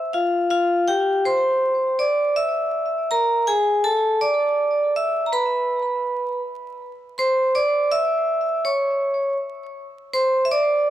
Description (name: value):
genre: hip hop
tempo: 81 BPM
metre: 4/4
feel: swing 60% on 16ths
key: unclear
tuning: A4 = 440 Hz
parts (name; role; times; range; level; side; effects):
- vibraphone with hard mallets; solo; 0.0-10.9 s; F4 to E6; -19 LUFS; equal; tape echo
room: small room ambience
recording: dry, gritty hardware recording, vinyl crackle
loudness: -18 LUFS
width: side -12 dB against mid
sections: 0.0-10.9 A section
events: vibraphone solo 0.0-10.9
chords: 0.0 N.C.; 0.9 Gsus4; 1.6 Csus2; 2.4 N.C.; 3.1 G#sus2; 3.8 Asus4; 5.3 N.C.; 7.5 Dsus2; 8.3 C#m; 9.0 N.C.; 9.8 Csus2